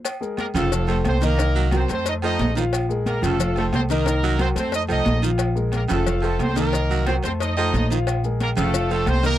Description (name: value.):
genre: latin, salsa.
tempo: 180 BPM.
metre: 4/4.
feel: straight.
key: unclear.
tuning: A4 = 440 Hz.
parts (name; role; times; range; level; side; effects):
agogo bells and timbales; percussion; 0.0-9.2 s; none; -32 LUFS; right 5 dB; none.
congas; percussion; 0.0-9.4 s; none; -30 LUFS; equal; none.
cowbell; percussion; 0.1-9.4 s; none; -33 LUFS; left 9 dB; none.
maracas; percussion; 0.1-9.4 s; none; -35 LUFS; left 14 dB; none.
dark baby grand piano; accompaniment; 0.2-9.4 s; Eb3 to F5; -26 LUFS; left 3 dB; none.
bright horn section; melody; 0.4-9.4 s; A3 to Eb5; -26 LUFS; right 2 dB; none.
growling baritone saxophone; second line; 0.5-9.4 s; Db3 to Gb3; -28 LUFS; right 8 dB; none.
upright bass; bass; 0.5-9.4 s; F1 to F2; -23 LUFS; equal; none.
room: little or no reverb.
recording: dry, close 1970s-style studio recording.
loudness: -19 LUFS.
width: side -12 dB against mid.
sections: 0.0-9.4 A section.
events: none.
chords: 0.0 Bbm7; 0.7 F7; 1.4 Cm7b5; 2.1 F7; 2.7 Bbm7; 3.4 F7; 4.1 Cm7b5; 4.7 F7; 5.4 Bbm7; 6.1 F7; 6.7 Cm7b5; 7.4 F7; 8.1 Bbm7; 8.7 F7.